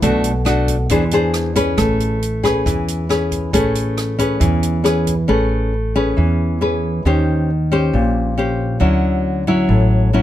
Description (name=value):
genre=bossa nova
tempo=137 BPM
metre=4/4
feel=straight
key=A major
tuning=A4 = 440 Hz
part: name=nylon-string guitar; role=accompaniment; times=0.0-10.2 s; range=A2 to C5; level=-16 LUFS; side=left 1 dB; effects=none
part: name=upright bass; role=bass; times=0.0-10.2 s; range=A1 to E2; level=-20 LUFS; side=right 1 dB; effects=none
part: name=open jazz drum kit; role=drums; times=0.0-5.2 s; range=hi-hat, kick drum, rim click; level=-25 LUFS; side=right 2 dB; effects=none
room=little or no reverb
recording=close, detailed microphones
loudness=-15 LUFS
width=side -12 dB against mid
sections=0.0-5.3 A section; 5.3-10.2 B section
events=none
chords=0.0 Bm7; 0.9 E7b13; 1.8 Amaj9; 7.0 D#6; 8.8 Dmaj9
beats=| 0.02 0.46 0.90 1.34 | 1.78 2.22 2.66 3.10 | 3.54 3.97 4.41 4.85 | 5.29 5.73 6.17 6.61 | 7.05 7.49 7.93 8.37 | 8.81 9.25 9.69 10.13